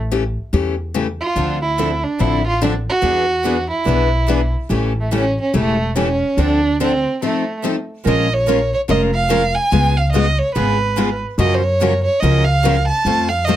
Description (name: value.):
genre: acoustic string swing (jazz manouche).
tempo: 144 BPM.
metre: 4/4.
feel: swing 62% on 8ths.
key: D minor, Bb minor from 8.1 s.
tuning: A4 = 440 Hz.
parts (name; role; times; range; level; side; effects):
upright bass; bass; 0.0-13.6 s; E1 to Gb2; -19 LUFS; equal; none.
picked steel-string acoustic guitar; accompaniment; 0.1-13.6 s; C#3 to Bb4; -20 LUFS; left 5 dB; none.
warm violin; melody; 1.2-13.6 s; A3 to A5; -19 LUFS; right 2 dB; none.
picked steel-string acoustic guitar; accompaniment; 1.4-13.6 s; Db3 to B4; -24 LUFS; right 6 dB; none.
room: light reverb.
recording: close, detailed microphones.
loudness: -15 LUFS.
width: side -12 dB against mid.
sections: 0.0-8.1 A section; 8.1-13.6 B section.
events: break 7.2-8.1.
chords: 0.0 A7; 1.4 Dm9; 3.0 E7; 4.7 A7; 6.4 Dm7; 7.2 F7; 8.1 Bbm7; 9.7 Db7; 11.4 Gbmaj7; 13.1 F.